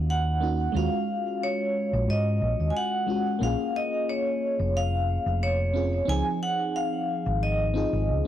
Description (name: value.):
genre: sunset chillout.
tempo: 90 BPM.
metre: 4/4.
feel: swing 54% on 16ths.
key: Bb minor.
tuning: A4 = 439 Hz.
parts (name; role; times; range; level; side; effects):
mellow FM electric piano; accompaniment; 0.0-8.3 s; F3 to Ab4; -30 LUFS; moving between left 8 dB and right 5 dB; chorus, auto-pan, analog delay.
hollow-body short-scale fingered electric bass; bass; 0.0-8.2 s; F1 to Ab2; -26 LUFS; equal; tube saturation.
vibraphone with medium hard mallets; melody; 0.1-8.3 s; Db5 to Ab5; -28 LUFS; equal; analog delay.
room: studio reverb.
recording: dry, gritty hardware recording.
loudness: -24 LUFS.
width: side -11 dB against mid.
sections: 0.0-8.3 A section.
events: none.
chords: 0.0 Ab7sus4 (rootless); 0.8 Ebm11; 3.4 Bbm7; 6.1 Dbmaj9 (rootless).